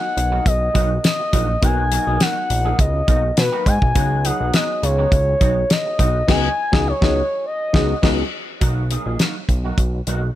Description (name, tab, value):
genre	early-eighties boogie funk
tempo	103 BPM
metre	4/4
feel	straight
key	unclear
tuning	A4 = 439 Hz
part	expressive portamento lead	melody	0.0-8.3 s	B4 to G#5	-21 LUFS	left 1 dB	chorus
part	mellow FM electric piano	accompaniment	0.0-8.2 s	B3 to D#5	-28 LUFS	left 5 dB	chorus
part	electric guitar with an envelope filter	riff	0.0-10.3 s	F#3 to G#4	-28 LUFS	right 5 dB	ensemble chorus
part	fat analog bass	bass	0.2-10.3 s	A#1 to B2	-21 LUFS	equal	none
part	damped 70s drum kit	drums	0.2-10.2 s	crash cymbal, hi-hat, kick drum, snare drum	-18 LUFS	equal	none
room	studio ambience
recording	none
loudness	-16 LUFS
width	side -13 dB against mid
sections	0.0-8.6 A section; 8.6-10.4 B section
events	band accent 6.3-8.6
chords	0.0 C#9sus4; 8.6 Bmaj7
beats	0.46 1.04 | 1.62 2.21 2.79 3.37 | 3.96 4.54 5.12 5.70 | 6.29 6.87 7.45 8.03 | 8.62 9.20 9.78